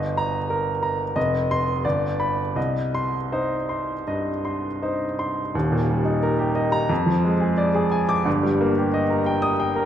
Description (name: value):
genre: classical, romantic character piece for solo piano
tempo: 79-93 BPM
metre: 4/4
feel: rubato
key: C minor, Eb major from 5.5 s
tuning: A4 = 439 Hz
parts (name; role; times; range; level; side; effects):
- clear baby grand piano; solo; 0.0-9.9 s; Eb1 to Eb6; -20 LUFS; equal; none
room: moderate concert hall reverb, RT60 1.8 s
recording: none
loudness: -20 LUFS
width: side -10 dB against mid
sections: 0.0-5.5 A section; 5.5-9.9 B section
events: none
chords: 0.0 Eb/G; 1.2 F5; 1.8 G; 2.6 Cm; 5.5 Eb; 6.9 Ddim/F; 8.3 Eb/G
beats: 0.50 1.16 1.84 | 2.56 3.32 4.07 4.81 | 5.54 6.23 6.90 7.58 | 8.26 8.93 9.60